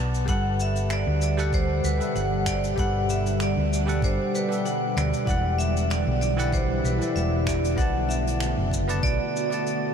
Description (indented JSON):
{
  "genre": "sunset chillout",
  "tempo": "96 BPM",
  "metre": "4/4",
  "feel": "swing 53% on 16ths",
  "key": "G major",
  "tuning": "A4 = 440 Hz",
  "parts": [
    { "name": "bell-like tine electric piano", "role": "accompaniment", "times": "0.0-9.9 s", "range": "E3 to A5", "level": "-29 LUFS", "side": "equal", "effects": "auto-pan, tape echo" },
    { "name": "hollow-body short-scale fingered electric bass", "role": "bass", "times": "0.0-9.2 s", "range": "E1 to D2", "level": "-26 LUFS", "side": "equal", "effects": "none" },
    { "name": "jazz brush drum kit", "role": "drums", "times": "0.1-9.8 s", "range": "finger snaps, hi-hat, shaker", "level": "-36 LUFS", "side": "equal", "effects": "none" },
    { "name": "vibraphone with hard mallets", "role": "melody", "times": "0.3-9.9 s", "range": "B4 to G5", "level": "-29 LUFS", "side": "right 1 dB", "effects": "tape echo" },
    { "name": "ethereal airy pad", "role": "sustained chords", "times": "1.2-9.9 s", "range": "B2 to F#5", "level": "-30 LUFS", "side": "right 1 dB", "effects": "ensemble chorus, built-in reverb" },
    { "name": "electronic kick drum", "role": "drums", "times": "0.3-9.2 s", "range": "none", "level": "-27 LUFS", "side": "equal", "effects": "none" }
  ],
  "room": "moderate huge ambient reverb, RT60 9.4 s",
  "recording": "dreamy mix soaked in reverb",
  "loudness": "-22 LUFS",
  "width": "side -7 dB against mid",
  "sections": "0.0-9.9 A section",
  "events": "none",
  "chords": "0.3 Gmaj7; 5.3 Em7; 7.8 Bm7"
}